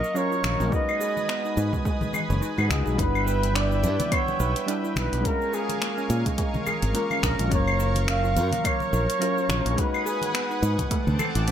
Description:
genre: sunset chillout.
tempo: 106 BPM.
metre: 4/4.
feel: swing 57% on 16ths.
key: unclear.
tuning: A4 = 439 Hz.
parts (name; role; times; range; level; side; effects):
mellow flugelhorn; melody; 0.0-11.5 s; G#4 to E#5; -29 LUFS; right 1 dB; ping-pong delay.
soft electric-piano-like synth keys; accompaniment; 0.0-10.9 s; F#3 to E#5; -31 LUFS; moving between left 5 dB and right 7 dB; chorus, auto-pan, ping-pong delay.
lush unison pad; sustained chords; 0.0-11.5 s; C4 to D#6; -34 LUFS; right 1 dB; chorus.
deep house drum kit; drums; 0.0-11.5 s; cabasa, claves, finger snaps, hi-hat; -30 LUFS; left 1 dB; none.
steel pan; arpeggios; 0.1-11.5 s; G#3 to B4; -33 LUFS; right 2 dB; ping-pong delay.
modern bright fingered electric bass; bass; 0.4-11.5 s; F#1 to A#2; -24 LUFS; equal; none.
congas; percussion; 0.4-11.3 s; none; -34 LUFS; left 2 dB; none.
electronic kick drum; drums; 0.7-11.0 s; none; -28 LUFS; equal; none.
room: light reverb.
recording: none.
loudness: -22 LUFS.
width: side -9 dB against mid.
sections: 0.0-11.5 A section.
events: none.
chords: 0.0 F#maj7; 0.7 G#m7; 3.0 G6; 5.2 A#m7; 7.5 F#maj7; 9.8 G#m7; 10.9 D7.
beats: 0.16 | 0.72 1.29 1.85 2.42 | 2.99 3.55 4.12 4.68 | 5.25 5.82 6.38 6.95 | 7.51 8.08 8.65 9.21 | 9.78 10.35 10.91 11.48.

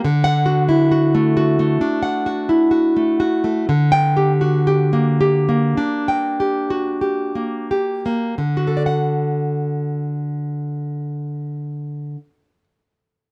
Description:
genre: romantic piece for solo classical guitar.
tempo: 41-70 BPM.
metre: 4/4.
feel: rubato.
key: D major.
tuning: A4 = 439 Hz.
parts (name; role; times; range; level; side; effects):
nylon-string guitar; solo; 0.0-12.6 s; D3 to G5; -19 LUFS; equal; none.
room: little or no reverb.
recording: dry, close 1970s-style studio recording.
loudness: -19 LUFS.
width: mono.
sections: 0.0-8.4 A section; 8.4-13.3 B section.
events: slowing down 0.0-8.4.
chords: 0.1 D; 3.7 Gm/D; 8.4 D.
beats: | 0.06 0.93 1.82 2.73 | 3.68 4.68 5.79 7.02 | 8.40 9.70 10.96 12.23.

